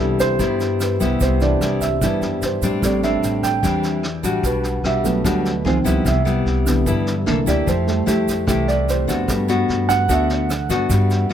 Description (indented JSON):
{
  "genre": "bossa nova",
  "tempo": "149 BPM",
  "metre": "4/4",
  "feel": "straight",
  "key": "unclear",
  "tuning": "A4 = 437 Hz",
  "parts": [
    { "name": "dark concert grand piano", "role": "accompaniment", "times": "0.0-11.3 s", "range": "D3 to G5", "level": "-22 LUFS", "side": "right 3 dB", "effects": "none" },
    { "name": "nylon-string guitar", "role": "accompaniment", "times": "0.0-11.3 s", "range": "G2 to A4", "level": "-21 LUFS", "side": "left 3 dB", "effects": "none" },
    { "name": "upright bass", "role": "bass", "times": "0.0-11.3 s", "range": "A1 to A2", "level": "-22 LUFS", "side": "equal", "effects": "none" },
    { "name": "vintage brush drum kit", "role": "drums", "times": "0.2-11.3 s", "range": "kick drum, rim click, snare drum", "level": "-28 LUFS", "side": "equal", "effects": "none" },
    { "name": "egg shaker", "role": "percussion", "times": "0.2-11.3 s", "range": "none", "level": "-32 LUFS", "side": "right 9 dB", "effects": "none" }
  ],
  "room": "little or no reverb",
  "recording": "close, detailed microphones",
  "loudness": "-16 LUFS",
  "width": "side -9 dB against mid",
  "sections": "0.0-11.3 A section",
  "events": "grand piano solo 0.0-11.3",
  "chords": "0.0 Cmaj7; 2.8 Am7; 4.4 Gmaj7/B; 5.7 C#maj7; 6.1 Cmaj7; 7.3 C13; 7.7 Fmaj9; 9.3 Gmaj7"
}